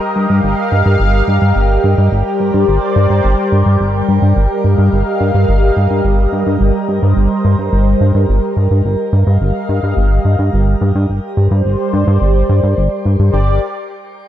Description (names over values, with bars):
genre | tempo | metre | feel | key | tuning
synthwave | 107 BPM | 4/4 | straight | unclear | A4 = 443 Hz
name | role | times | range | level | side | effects
lush unison pad | sustained chords | 0.0-13.6 s | G3 to F5 | -16 LUFS | equal | chorus, phaser, shimmer reverb
chorused synth bass | bass | 0.2-13.6 s | G1 to G2 | -12 LUFS | equal | none
room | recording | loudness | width
light reverb, digital ambience | none | -11 LUFS | side -11 dB against mid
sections
0.0-13.3 A section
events
filter sweep on analog synth pad 0.0-13.3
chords
0.0 Ebadd9/G; 2.1 Bbadd9/G; 4.4 Ebadd9/G; 6.6 Eb6/G; 8.8 Ebadd9/G; 11.1 Bbadd9/G; 13.3 Gm